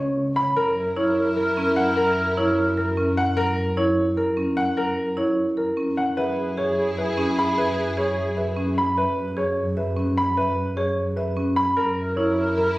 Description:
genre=classical, minimalist pattern music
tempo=300 BPM (eighths)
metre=7/8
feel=straight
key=F# mixolydian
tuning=A4 = 438 Hz
part: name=dark grand piano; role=melody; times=0.0-12.8 s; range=A#4 to Cb6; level=-25 LUFS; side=left 1 dB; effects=none
part: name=marimba with medium mallets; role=arpeggios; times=0.0-12.8 s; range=Db4 to E5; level=-24 LUFS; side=right 1 dB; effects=none
part: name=dark chamber double bass section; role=bass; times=0.0-12.8 s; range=Db2 to F#2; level=-29 LUFS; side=equal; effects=none
part: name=bright alto flute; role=second line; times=0.6-3.1, 6.2-8.7, 11.8-12.7 s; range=G#4 to A#4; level=-28 LUFS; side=equal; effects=none
part: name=warm symphonic string section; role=sustained chords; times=0.6-3.1, 6.2-8.7, 11.8-12.8 s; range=E4 to A#4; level=-30 LUFS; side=equal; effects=none
room=moderate recital hall reverb, RT60 1.3 s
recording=recorded on a phone in the room, studio reverb, compression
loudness=-20 LUFS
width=side -18 dB against mid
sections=0.6-12.8 A section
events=none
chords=0.0 Cbsus2/Db; 0.6 F#7; 6.2 E/F#; 11.8 F#7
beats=0.17 0.37 | 0.57 0.77 0.97 1.17 1.37 1.57 1.77 | 1.97 2.17 2.37 2.57 2.77 2.97 3.17 | 3.37 3.57 3.77 3.97 4.17 4.37 4.57 | 4.77 4.97 5.17 5.37 5.57 5.77 5.97 | 6.17 6.37 6.57 6.77 6.97 7.17 7.37 | 7.57 7.77 7.97 8.17 8.37 8.57 8.77 | 8.97 9.17 9.37 9.57 9.77 9.97 10.17 | 10.37 10.57 10.77 10.97 11.17 11.37 11.57 | 11.77 11.97 12.17 12.37 12.57 12.77

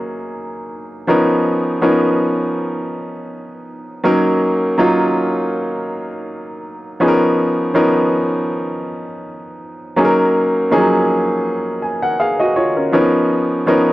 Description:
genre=R&B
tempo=81 BPM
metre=4/4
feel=swing 54% on 16ths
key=Eb minor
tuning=A4 = 440 Hz
part: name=warm grand piano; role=solo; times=0.0-13.9 s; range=F3 to Ab5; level=-15 LUFS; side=equal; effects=none
room=small room reverb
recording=dry, gritty hardware recording, transformer saturation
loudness=-14 LUFS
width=side -17 dB against mid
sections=0.0-13.9 A section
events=none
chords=0.0 Ebm7; 1.1 Db13; 4.0 Ebm7; 7.0 Db13; 10.0 Ebm7; 12.9 Db13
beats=0.34 | 1.08 1.82 2.56 3.30 | 4.04 4.78 5.52 6.26 | 7.00 7.74 8.48 9.22 | 9.96 10.71 11.45 12.19 | 12.93 13.67

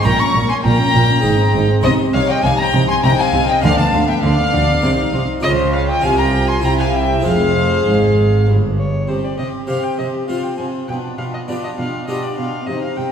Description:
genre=classical, baroque-style concerto movement with solo episodes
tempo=100 BPM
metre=3/4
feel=straight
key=F minor, C minor from 9.1 s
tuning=A4 = 444 Hz
part: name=dark violin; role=melody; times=0.0-13.1 s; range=C5 to Db6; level=-23 LUFS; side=left 1 dB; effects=none
part: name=rich chamber violin section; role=melody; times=0.0-13.1 s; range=G4 to Db6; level=-24 LUFS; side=left 2 dB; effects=none
part: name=rich chamber violin section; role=second line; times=0.0-13.1 s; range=Eb4 to Bb5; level=-23 LUFS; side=left 2 dB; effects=none
part: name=dark chamber viola section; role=accompaniment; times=0.0-13.1 s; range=Bb3 to Ab4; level=-22 LUFS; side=equal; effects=none
part: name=harpsichord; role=accompaniment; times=0.0-13.1 s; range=F2 to Db5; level=-24 LUFS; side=equal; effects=none
part: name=warm chamber double bass section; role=bass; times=0.0-9.1 s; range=F1 to D2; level=-18 LUFS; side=right 1 dB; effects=none
part: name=warm chamber cello section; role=bass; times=0.1-13.1 s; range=F2 to D3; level=-21 LUFS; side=right 2 dB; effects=none
room=wet recital hall reverb, RT60 1.5 s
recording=heard from further back in the room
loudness=-14 LUFS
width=side -8 dB against mid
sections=0.0-9.1 A section; 9.1-13.1 B section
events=none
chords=0.1 Gdim/Bb; 1.2 Ab; 1.8 Cm; 3.6 Bdim/D; 4.8 Cm; 5.4 Bbm/Db; 6.0 F5/C; 6.6 C; 7.2 Fm; 9.1 C5; 10.3 F5/C; 10.9 G7/B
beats=| 0.05 0.65 1.25 | 1.84 2.44 3.04 | 3.63 4.23 4.83 | 5.43 6.03 6.63 | 7.24 7.86 8.47 | 9.08 9.68 10.28 | 10.88 11.48 12.08 | 12.67

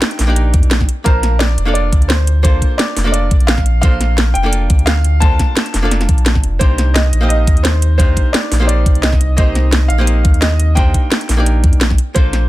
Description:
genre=liquid drum and bass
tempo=173 BPM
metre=4/4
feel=swing 53% on 16ths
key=C dorian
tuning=A4 = 440 Hz
part: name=clear concert grand piano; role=melody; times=0.0-12.5 s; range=Bb4 to A5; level=-22 LUFS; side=equal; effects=ping-pong delay
part: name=archtop guitar, miked and amplified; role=accompaniment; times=0.0-12.5 s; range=Bb3 to A5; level=-22 LUFS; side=right 1 dB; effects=digital delay
part: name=garage drum kit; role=drums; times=0.0-12.4 s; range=hi-hat, snare drum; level=-18 LUFS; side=equal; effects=none
part: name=sub bass with octave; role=bass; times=0.2-12.5 s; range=F1 to F2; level=-14 LUFS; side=equal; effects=none
part: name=electronic kick drum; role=drums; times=0.5-12.2 s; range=none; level=-13 LUFS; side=equal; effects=none
room=little or no reverb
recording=dense, heavily limited modern master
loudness=-11 LUFS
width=side -16 dB against mid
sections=0.0-12.5 A section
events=none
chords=0.0 Cm9; 0.9 Bbmaj9; 6.6 Cm9; 12.0 Bbmaj9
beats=0.02 0.36 0.71 | 1.06 1.41 1.75 2.10 | 2.45 2.79 3.14 3.49 | 3.83 4.18 4.53 4.87 | 5.22 5.57 5.91 6.26 | 6.61 6.96 7.30 7.65 | 8.00 8.34 8.69 9.04 | 9.38 9.73 10.08 10.42 | 10.77 11.12 11.46 11.81 | 12.16

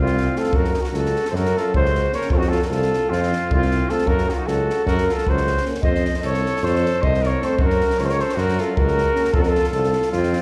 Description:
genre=balkan folk, Balkan brass band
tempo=307 BPM (eighths)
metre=9/8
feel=straight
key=F phrygian dominant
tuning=A4 = 439 Hz
part: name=warm flugelhorn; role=melody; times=0.0-10.4 s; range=F4 to Eb5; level=-24 LUFS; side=equal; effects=slapback echo
part: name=warm trumpet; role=second line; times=0.0-10.4 s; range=C4 to C5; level=-32 LUFS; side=equal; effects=slapback echo
part: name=clear tuba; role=bass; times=0.0-10.3 s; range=C2 to Gb2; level=-24 LUFS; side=equal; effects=none
part: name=compact cocktail drum kit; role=percussion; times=0.1-10.4 s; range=kick drum, snare drum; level=-27 LUFS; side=equal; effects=none
part: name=mellow euphonium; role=accompaniment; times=0.3-9.3 s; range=A3 to Bb3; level=-33 LUFS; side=equal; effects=slapback echo
part: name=warm trombone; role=accompaniment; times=0.4-9.3 s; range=C4 to Db4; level=-31 LUFS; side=equal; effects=none
room=light reverb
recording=live gig heard through the venue's PA, recital hall reverb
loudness=-20 LUFS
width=mono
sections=0.0-10.4 A section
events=none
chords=0.0 F; 0.5 Gb; 2.3 F; 4.1 Gb; 5.8 F; 7.6 Gb; 9.3 F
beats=0.14 0.34 | 0.53 0.73 0.93 1.12 1.32 1.52 1.72 1.91 2.11 | 2.30 2.50 2.70 2.89 3.09 3.29 3.48 3.68 3.87 | 4.07 4.26 4.46 4.66 4.85 5.05 5.24 5.44 5.63 | 5.83 6.03 6.22 6.42 6.61 6.81 7.00 7.20 7.39 | 7.59 7.78 7.98 8.17 8.37 8.56 8.75 8.95 9.14 | 9.34 9.53 9.72 9.92 10.11 10.30

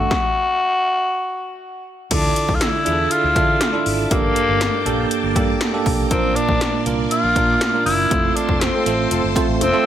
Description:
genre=1980s-style pop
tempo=120 BPM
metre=4/4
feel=straight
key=unclear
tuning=A4 = 440 Hz
part: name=raspy tenor saxophone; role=melody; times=0.0-9.9 s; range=Bb3 to F#4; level=-20 LUFS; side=left 2 dB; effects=tape echo
part: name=bell-like tine electric piano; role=accompaniment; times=0.0-9.9 s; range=G2 to E5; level=-22 LUFS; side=right 5 dB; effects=fast stereo tremolo
part: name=fretless electric bass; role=bass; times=0.0-9.7 s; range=F1 to D3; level=-25 LUFS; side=left 1 dB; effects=none
part: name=80s electronic pad drums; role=drums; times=0.1-9.7 s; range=crash cymbal, hi-hat, kick drum, snare drum, toms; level=-22 LUFS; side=left 1 dB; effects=gated reverb on snare and toms
part: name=phased string machine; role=sustained chords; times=2.1-9.9 s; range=Bb3 to D6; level=-27 LUFS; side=equal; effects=ensemble chorus, phaser
part: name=analog synth brass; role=stabs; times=8.7-9.9 s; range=C4 to A4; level=-26 LUFS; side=left 4 dB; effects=chorus
room=light reverb, digital ambience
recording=none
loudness=-16 LUFS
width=side -10 dB against mid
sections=0.0-2.1 A section; 2.1-9.9 B section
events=stop 0.1-2.1; band accent 8.1-9.9; drum fill 9.6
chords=0.0 D; 2.1 Dmadd9; 4.1 Gmadd9; 6.1 Bb; 8.1 F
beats=| 0.11 0.61 1.11 1.61 | 2.11 2.61 3.11 3.61 | 4.11 4.61 5.11 5.61 | 6.11 6.61 7.11 7.61 | 8.11 8.61 9.11 9.61

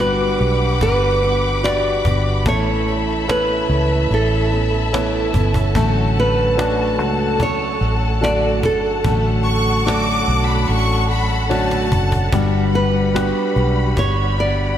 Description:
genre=pop ballad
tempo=73 BPM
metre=4/4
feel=straight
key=D major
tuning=A4 = 439 Hz
part: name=nylon-string guitar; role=melody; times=0.0-14.8 s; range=A4 to D5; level=-21 LUFS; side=right 1 dB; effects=slapback echo
part: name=warm grand piano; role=accompaniment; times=0.0-14.8 s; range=G3 to C#5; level=-24 LUFS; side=left 4 dB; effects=slapback echo
part: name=dark studio string section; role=sustained chords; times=0.0-14.8 s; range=G3 to D6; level=-25 LUFS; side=left 2 dB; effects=none
part: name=fingerpicked plugged-in steel-string acoustic guitar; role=arpeggios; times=0.0-14.8 s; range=A2 to F#4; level=-25 LUFS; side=right 5 dB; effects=slapback echo
part: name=vintage muted fingered electric bass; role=bass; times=0.0-14.8 s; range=F#1 to C#2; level=-20 LUFS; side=equal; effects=none
part: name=cajon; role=drums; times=0.0-14.5 s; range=none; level=-26 LUFS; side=equal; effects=none
part: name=clear symphonic violin section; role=second line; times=9.4-12.5 s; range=A5 to D6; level=-22 LUFS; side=equal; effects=slapback echo
room=moderate lush hall reverb, RT60 2.6 s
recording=big arena sound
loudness=-15 LUFS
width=side -10 dB against mid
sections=0.0-14.8 A section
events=drum fill 11.5-12.3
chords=0.0 Gmaj7; 2.5 Aadd9; 5.7 Dmaj7; 12.3 Gmaj7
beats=0.00 0.82 1.64 | 2.46 3.28 4.11 4.93 | 5.75 6.57 7.39 8.21 | 9.04 9.86 10.68 11.50 | 12.32 13.15 13.97

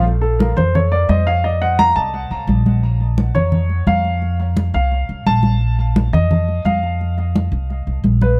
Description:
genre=latin, Cuban son and guajira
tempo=173 BPM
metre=4/4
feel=straight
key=Bb harmonic minor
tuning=A4 = 440 Hz
part: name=warm baby grand piano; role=arpeggios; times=0.0-8.4 s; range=A4 to Bb5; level=-22 LUFS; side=equal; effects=tape echo
part: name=upright bass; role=bass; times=0.0-8.4 s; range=Bb1 to F2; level=-20 LUFS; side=equal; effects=none
part: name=congas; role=percussion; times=0.0-8.4 s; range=none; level=-22 LUFS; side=equal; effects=none
room=light reverb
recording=none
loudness=-17 LUFS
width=mono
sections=0.0-8.4 A section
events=grand piano solo 0.0-8.4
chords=0.0 Bb5; 1.4 F; 2.8 Bbm; 4.2 F; 5.6 Bb5; 7.0 F5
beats=| 0.05 0.40 0.74 1.09 | 1.44 1.79 2.13 2.48 | 2.83 3.18 3.52 3.87 | 4.22 4.57 4.92 5.26 | 5.61 5.96 6.30 6.65 | 7.00 7.35 7.70 8.04 | 8.39

